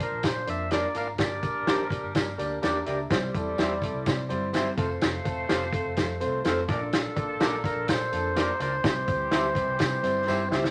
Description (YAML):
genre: uptempo 1960s-style soul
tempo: 126 BPM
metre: 4/4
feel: straight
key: C mixolydian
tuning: A4 = 440 Hz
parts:
  - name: percussive tonewheel organ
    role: melody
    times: 0.0-1.9, 7.7-10.5 s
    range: Bb4 to F5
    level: -32 LUFS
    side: equal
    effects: overdrive
  - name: clear horn section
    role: second line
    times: 0.0-10.5 s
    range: E3 to D5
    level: -38 LUFS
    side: equal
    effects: none
  - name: warm concert grand piano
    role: accompaniment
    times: 0.0-10.7 s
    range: G3 to E5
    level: -34 LUFS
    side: equal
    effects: none
  - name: vintage muted fingered electric bass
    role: bass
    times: 0.0-10.7 s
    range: E1 to C3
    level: -38 LUFS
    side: equal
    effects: none
  - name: warm soul drum kit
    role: drums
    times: 0.0-10.7 s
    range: hi-hat, kick drum, snare drum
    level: -30 LUFS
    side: equal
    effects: none
  - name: tambourine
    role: percussion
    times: 0.0-10.6 s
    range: none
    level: -51 LUFS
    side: equal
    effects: none
  - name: electric guitar through a small old amp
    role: stabs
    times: 0.7-10.6 s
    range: C4 to D5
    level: -33 LUFS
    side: equal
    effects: none
room: wet studio reverb, RT60 0.6 s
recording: none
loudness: -27 LUFS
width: mono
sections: 0.0-10.7 A section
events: drum fill 10.3-10.7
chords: 0.0 Bb; 1.2 Gm; 3.1 C; 4.8 F; 6.7 Bb; 8.8 C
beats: 0.23 0.71 | 1.19 1.67 2.15 2.62 | 3.10 3.58 4.06 4.54 | 5.01 5.49 5.97 6.45 | 6.93 7.41 7.88 8.36 | 8.84 9.32 9.80 10.28